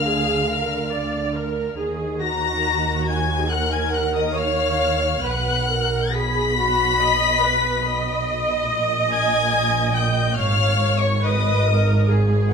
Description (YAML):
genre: classical, slow romantic movement for string orchestra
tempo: 70 BPM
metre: 4/4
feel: rubato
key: Eb minor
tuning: A4 = 439 Hz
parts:
  - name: rich chamber violin section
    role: melody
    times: 0.0-12.1 s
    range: Db6 to B6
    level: -24 LUFS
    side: left 5 dB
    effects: none
  - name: rich chamber violin section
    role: second line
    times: 0.0-12.5 s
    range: Db5 to B5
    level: -25 LUFS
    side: left 5 dB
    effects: none
  - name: rich studio viola section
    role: accompaniment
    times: 0.0-12.5 s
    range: Gb4 to D#5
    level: -24 LUFS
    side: right 2 dB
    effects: none
  - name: dark chamber cello section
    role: bass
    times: 0.0-12.5 s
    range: Ab2 to Eb3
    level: -25 LUFS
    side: right 1 dB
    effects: none
  - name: rich chamber double bass section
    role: bass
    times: 0.0-12.5 s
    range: Ab1 to Eb2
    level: -26 LUFS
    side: right 3 dB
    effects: none
room: moderate recital hall reverb, RT60 1.6 s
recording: minimal, uncompressed stereo recording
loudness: -18 LUFS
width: side -6 dB against mid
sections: 0.0-12.5 A section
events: none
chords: 0.0 Bb/D; 1.8 Ebm; 5.2 B; 8.7 Eb5/Bb; 10.4 Ab5